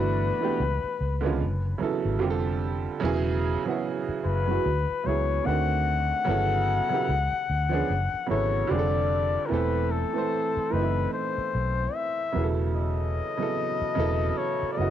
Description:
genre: R&B, neo-soul.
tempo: 74 BPM.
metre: 4/4.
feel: swing 59% on 16ths.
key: unclear.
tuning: A4 = 440 Hz.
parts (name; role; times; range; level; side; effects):
clear flugelhorn; melody; 0.0-14.9 s; A4 to F#5; -28 LUFS; left 7 dB; none.
warm upright piano; accompaniment; 0.0-14.9 s; B2 to C5; -28 LUFS; right 6 dB; cassette tape.
vintage muted fingered electric bass; bass; 0.0-14.9 s; E1 to D2; -28 LUFS; left 1 dB; none.
room: light reverb, small room ambience.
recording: home recording on cassette.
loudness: -24 LUFS.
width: side -10 dB against mid.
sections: 0.0-9.5 A section; 9.5-14.9 B section.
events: none.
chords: 0.0 G69; 0.6 C#7b9; 1.4 F#m11; 2.2 Fadd9; 3.0 Eadd9; 4.6 Dmaj9; 5.5 D7b9; 6.3 G69; 7.1 C#7b9; 7.9 F#m11; 8.7 Fadd9; 9.5 Amadd9/E; 12.3 Aadd9/E.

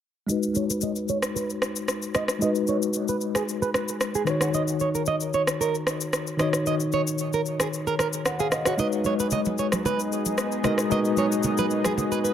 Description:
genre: afrobeats.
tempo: 113 BPM.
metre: 4/4.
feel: straight.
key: G# minor.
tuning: A4 = 439 Hz.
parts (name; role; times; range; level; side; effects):
mellow tine electric piano; accompaniment; 0.3-12.3 s; D#3 to F#5; -26 LUFS; left 2 dB; medium stereo tremolo, low-pass filter, dub echo.
flamenco guitar; riff; 0.3-12.3 s; F#4 to D#5; -29 LUFS; right 5 dB; low-pass filter, dub echo.
electronic shaker and rim click; drums; 0.3-12.3 s; none; -28 LUFS; left 1 dB; overdrive.
lush unison pad; sustained chords; 8.8-12.3 s; F#3 to D#5; -31 LUFS; equal; chorus.
congas; percussion; 8.8-12.1 s; none; -32 LUFS; right 3 dB; none.
room: moderate spring reverb, RT60 1.7 s, small room ambience.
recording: echo-heavy mix.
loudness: -23 LUFS.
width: side -9 dB against mid.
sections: 0.3-8.8 A section; 8.8-12.3 B section.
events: filter sweep 0.3-8.8; tine electric piano fill 12.0-12.3.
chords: 0.3 G#m7; 4.3 D#m7; 8.8 G#m7.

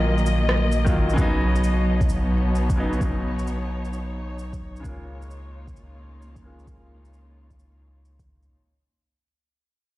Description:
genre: future garage.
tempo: 131 BPM.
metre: 4/4.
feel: swing 64% on 16ths.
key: unclear.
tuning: A4 = 439 Hz.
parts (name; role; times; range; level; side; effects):
bright upright piano; accompaniment; 0.0-8.5 s; C#3 to F4; -29 LUFS; equal; sidechain pumping, low-pass filter, tape echo.
muted studio string section; sustained chords; 0.0-8.5 s; Bb2 to Eb5; -27 LUFS; equal; sidechain pumping.
warm sub bass; bass; 0.0-8.5 s; Bb1 to Db2; -25 LUFS; equal; sidechain pumping.
electronic shaker and rim click; drums; 0.2-8.5 s; none; -31 LUFS; right 1 dB; overdrive.
electronic kick drum; drums; 0.9-8.3 s; none; -24 LUFS; equal; overdrive.
room: light reverb, digital ambience.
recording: played on a big sound system in a bare room, large studio reverb, vinyl crackle.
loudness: -20 LUFS.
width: side -17 dB against mid.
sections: 0.0-8.5 A section.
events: fade-out 0.0-8.5; filter sweep on upright piano 0.0-8.5.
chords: 0.0 Ebmadd9/Bb; 1.2 Badd9; 4.8 Db6.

